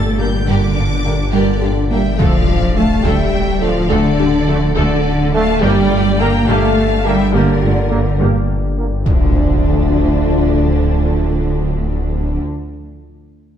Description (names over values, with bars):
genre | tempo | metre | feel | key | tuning
cinematic, hybrid orchestral and electronic film score | 70 BPM (dotted quarters) | 6/8 | straight | D minor | A4 = 440 Hz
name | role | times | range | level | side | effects
rich symphonic violin section | melody | 0.0-12.4 s | D5 to A6 | -27 LUFS | left 2 dB | low-pass filter
rich symphonic viola section | accompaniment | 0.0-12.4 s | F3 to A4 | -23 LUFS | equal | low-pass filter
evolving wavetable pad | sustained chords | 0.0-12.4 s | Bb2 to D5 | -26 LUFS | equal | none
glassy wavetable pluck | arpeggios | 0.0-8.4 s | D3 to G4 | -24 LUFS | right 1 dB | none
detuned saw bass | bass | 0.0-12.4 s | D1 to G1 | -20 LUFS | left 1 dB | none
warm symphonic cello section | bass | 0.0-12.4 s | D3 to Bb3 | -20 LUFS | right 3 dB | none
rich symphonic violin section | second line | 0.2-12.4 s | D4 to G5 | -26 LUFS | left 4 dB | none
clear trombone section | sustained chords | 0.2-12.4 s | D3 to Bb3 | -27 LUFS | right 4 dB | low-pass filter
warm French horn section | sustained chords | 0.2-12.4 s | D3 to G4 | -22 LUFS | left 6 dB | low-pass filter
rich symphonic double bass section | bass | 0.2-12.4 s | G1 to G2 | -20 LUFS | right 2 dB | none
impact | sound effects | 2.2-3.9, 9.1-10.8 s | none | -18 LUFS | equal | none
room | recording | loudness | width
moderate scoring stage reverb, RT60 1.7 s | dark, warm production | -12 LUFS | side -9 dB against mid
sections
0.0-2.2 A section; 2.2-9.1 B section; 9.1-12.5 C section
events
impact 2.2-3.9, 9.1-10.8; filter sweep 2.2-9.1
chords
0.0 Gm; 2.2 Dm; 5.6 Gm; 9.1 Dm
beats
| 0.48 1.34 | 2.20 3.06 | 3.91 4.77 | 5.63 6.48 | 7.34 8.20 | 9.05 9.91 | 10.77 11.63